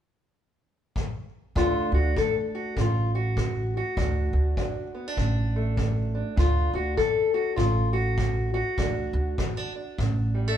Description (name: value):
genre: acoustic country blues, solo or duo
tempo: 100 BPM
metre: 4/4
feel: swing 61% on 8ths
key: D major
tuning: A4 = 440 Hz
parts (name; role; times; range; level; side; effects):
- kick drum; drums; 1.0-10.2 s; none; -30 LUFS; left 1 dB; none
- fingerpicked steel-string acoustic guitar; melody; 1.6-10.6 s; D2 to A4; -27 LUFS; left 2 dB; none
- upright bass; bass; 1.6-10.6 s; A1 to D2; -25 LUFS; right 1 dB; none
room: light reverb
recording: band playing live in one room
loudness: -23 LUFS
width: side -10 dB against mid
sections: 0.0-1.6 A section; 1.6-10.6 B section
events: none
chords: 0.0 N.C.; 1.6 D